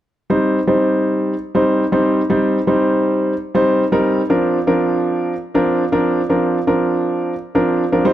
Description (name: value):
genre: pop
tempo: 120 BPM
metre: 4/4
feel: straight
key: C minor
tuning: A4 = 441 Hz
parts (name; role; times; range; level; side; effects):
- warm concert grand piano; accompaniment; 0.3-8.1 s; F3 to C5; -14 LUFS; equal; none
room: light reverb, small room ambience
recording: dry, close 1970s-style studio recording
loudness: -14 LUFS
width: side -12 dB against mid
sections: 0.3-8.1 A section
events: none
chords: 0.3 Cm; 4.3 Bbadd9